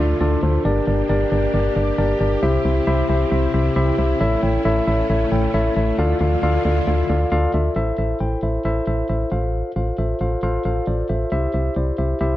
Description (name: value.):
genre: pop.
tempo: 135 BPM.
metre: 4/4.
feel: straight.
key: unclear.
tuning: A4 = 444 Hz.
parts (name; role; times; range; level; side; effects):
mellow tine electric piano; accompaniment; 0.0-12.4 s; D4 to G5; -21 LUFS; left 1 dB; none.
string machine, cellos; sustained chords; 0.0-7.7 s; C3 to G4; -27 LUFS; right 1 dB; ensemble chorus.
solid FM bass; bass; 0.0-12.4 s; G1 to D2; -20 LUFS; equal; none.
room: light reverb.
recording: dry, gritty hardware recording, cassette tape.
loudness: -17 LUFS.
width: side -14 dB against mid.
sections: 0.0-7.8 A section; 7.8-12.4 B section.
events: none.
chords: 0.0 Dmadd9; 0.7 Gm; 2.4 C; 4.2 A; 6.0 Dmadd9; 7.8 Am; 9.3 F/A; 11.3 C.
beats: 0.21 | 0.65 1.09 1.54 1.98 | 2.43 2.87 3.32 3.76 | 4.21 4.65 5.09 5.54 | 5.98 6.43 6.87 7.32 | 7.76 8.21 8.65 9.10 | 9.54 9.98 10.43 10.87 | 11.32 11.76 12.21.